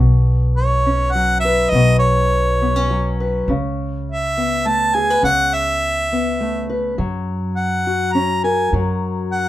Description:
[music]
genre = acoustic folk duo or small band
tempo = 103 BPM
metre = 3/4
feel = straight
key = unclear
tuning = A4 = 441 Hz
[part]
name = fingerpicked acoustic archtop guitar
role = accompaniment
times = 0.0-9.5 s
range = B2 to B4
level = -21 LUFS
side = left 2 dB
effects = none
[part]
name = upright bass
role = bass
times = 0.0-9.5 s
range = B1 to F#2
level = -20 LUFS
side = equal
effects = none
[part]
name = warm harmonica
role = melody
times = 0.6-9.5 s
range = C#5 to A#5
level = -18 LUFS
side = right 1 dB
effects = none
[sound]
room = light reverb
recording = minimal, uncompressed stereo recording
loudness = -16 LUFS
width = side -14 dB against mid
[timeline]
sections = 0.0-9.5 A section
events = none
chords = 0.0 Bsus2; 3.5 Aadd9/C#; 7.0 F#

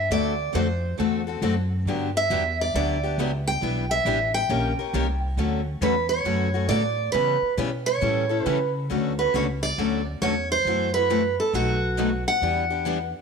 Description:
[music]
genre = acoustic string swing (jazz manouche)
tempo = 136 BPM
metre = 4/4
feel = swing 64% on 8ths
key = D major from 8.9 s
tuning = A4 = 440 Hz
[part]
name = picked steel-string acoustic guitar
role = melody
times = 0.0-13.1 s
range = F#4 to G5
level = -24 LUFS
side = right 3 dB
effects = none
[part]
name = upright bass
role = bass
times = 0.0-13.1 s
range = A1 to C#3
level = -28 LUFS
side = equal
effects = none
[part]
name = picked steel-string acoustic guitar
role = accompaniment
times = 0.1-13.0 s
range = B2 to A#4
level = -28 LUFS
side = left 10 dB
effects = none
[part]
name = picked steel-string acoustic guitar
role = accompaniment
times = 0.1-13.0 s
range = B2 to B4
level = -33 LUFS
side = right 11 dB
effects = none
[sound]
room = moderate echo chamber reverb, RT60 1.6 s, studio reverb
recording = 1960s-style stereo with parts hard left and right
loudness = -21 LUFS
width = side -5 dB against mid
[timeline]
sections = 0.0-8.9 A section; 8.9-13.2 B section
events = none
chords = 0.1 D7; 1.9 Gmaj7; 3.6 Em7; 4.5 D#7; 5.4 Dmaj7; 7.1 C#m7b5; 8.0 A7; 8.9 Dmaj7; 10.7 F#m7b5; 11.5 B7; 12.4 Em7

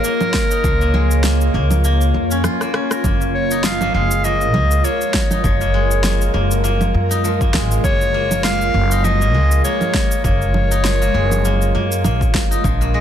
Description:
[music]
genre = organic downtempo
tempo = 100 BPM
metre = 4/4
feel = swing 56% on 16ths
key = unclear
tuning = A4 = 440 Hz
[part]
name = clear clarinet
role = melody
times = 0.0-13.0 s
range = Bb4 to F5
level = -22 LUFS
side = left 2 dB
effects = digital delay
[part]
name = ethereal airy pad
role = sustained chords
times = 0.0-13.0 s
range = Ab3 to Db5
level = -24 LUFS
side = right 1 dB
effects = ensemble chorus, built-in reverb, sidechain pumping
[part]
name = steel-string zither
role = arpeggios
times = 0.0-13.0 s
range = F3 to Bb4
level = -23 LUFS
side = left 2 dB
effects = ping-pong delay
[part]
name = electronic cabasa, congas, snare drum and rim click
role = drums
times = 0.0-12.9 s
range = none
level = -22 LUFS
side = right 2 dB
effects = studio reverb
[part]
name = electronic kick drum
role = drums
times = 0.3-12.8 s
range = none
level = -19 LUFS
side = equal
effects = studio reverb
[part]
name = upright bass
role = bass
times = 0.6-13.0 s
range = Gb1 to Gb2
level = -18 LUFS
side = equal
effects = none
[sound]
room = light reverb, small room ambience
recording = dense, heavily limited modern master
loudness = -14 LUFS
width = side -10 dB against mid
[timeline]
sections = 0.0-13.0 A section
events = break 2.4-3.0; drum fill 2.4-3.0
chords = 0.0 Db6; 3.0 Gbmaj9

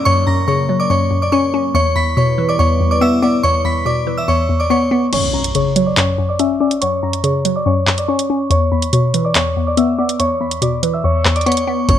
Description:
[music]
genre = hip hop, drill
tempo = 142 BPM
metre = 4/4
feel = half-time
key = unclear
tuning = A4 = 441 Hz
[part]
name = glassy wavetable pluck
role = accompaniment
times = 0.0-12.0 s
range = E2 to C#4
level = -16 LUFS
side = left 2 dB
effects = chorus, low-pass filter
[part]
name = dark analog pad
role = sustained chords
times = 0.0-5.1 s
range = F#3 to B4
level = -25 LUFS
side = right 1 dB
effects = chorus, phaser
[part]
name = downlifter and impact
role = sound effects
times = 0.0-1.7, 5.1-6.8 s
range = none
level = -29 LUFS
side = right 1 dB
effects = none
[part]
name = glassy synth bell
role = melody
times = 0.1-12.0 s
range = C#5 to B6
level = -18 LUFS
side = equal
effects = chorus, low-pass filter
[part]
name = drill drum kit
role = drums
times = 5.1-12.0 s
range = crash cymbal, handclaps, hi-hat, kick drum, rim click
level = -18 LUFS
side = equal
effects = vintage 12-bit sampler grit
[part]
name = growling 808-style bass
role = bass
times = 11.9-12.0 s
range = F#1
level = -20 LUFS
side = equal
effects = none
[sound]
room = light reverb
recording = none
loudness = -13 LUFS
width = side -10 dB against mid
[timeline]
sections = 0.0-5.1 A section; 5.1-12.0 B section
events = kick muted 5.1-11.9; impact 5.1-6.8; filter sweep 5.1-11.9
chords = 0.0 F#; 1.7 Em; 5.1 F#5; 8.5 E5

